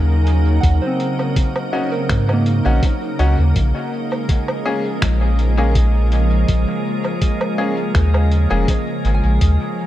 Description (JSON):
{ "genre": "ambient dub", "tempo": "82 BPM", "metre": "4/4", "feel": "straight", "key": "Bb minor", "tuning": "A4 = 440 Hz", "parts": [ { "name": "soft additive organ-like pad", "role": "sustained chords", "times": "0.0-9.9 s", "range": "Db3 to Bb4", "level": "-22 LUFS", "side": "equal", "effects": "ensemble chorus, built-in reverb" }, { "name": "soft synth bell", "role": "arpeggios", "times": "0.0-9.9 s", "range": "Bb3 to Ab5", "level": "-26 LUFS", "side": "right 2 dB", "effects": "chorus, tape echo" }, { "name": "soft dub sub bass", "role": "bass", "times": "0.0-9.6 s", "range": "F1 to Ab2", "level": "-15 LUFS", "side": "equal", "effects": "none" }, { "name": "lo-fi sampler-style drum kit", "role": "drums", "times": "0.3-9.6 s", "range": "finger snaps, hi-hat, woodblock", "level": "-26 LUFS", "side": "right 1 dB", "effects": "dub echo" }, { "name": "electronic kick drum", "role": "drums", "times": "0.6-9.6 s", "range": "none", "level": "-18 LUFS", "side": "equal", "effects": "none" }, { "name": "bright upright piano", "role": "stabs", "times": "1.7-8.6 s", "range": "Bb3 to Ab4", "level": "-25 LUFS", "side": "left 2 dB", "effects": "dub echo" }, { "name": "drifting glass-harmonics texture", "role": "texture", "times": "4.0-9.9 s", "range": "Ab3 to Ab4", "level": "-29 LUFS", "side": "right 3 dB", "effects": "chorus, built-in reverb" } ], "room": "light reverb, digital ambience", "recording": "dark, warm production", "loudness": "-15 LUFS", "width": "side -13 dB against mid", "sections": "0.0-9.9 A section", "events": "none", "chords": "0.0 Ebm7; 3.6 Bbm7" }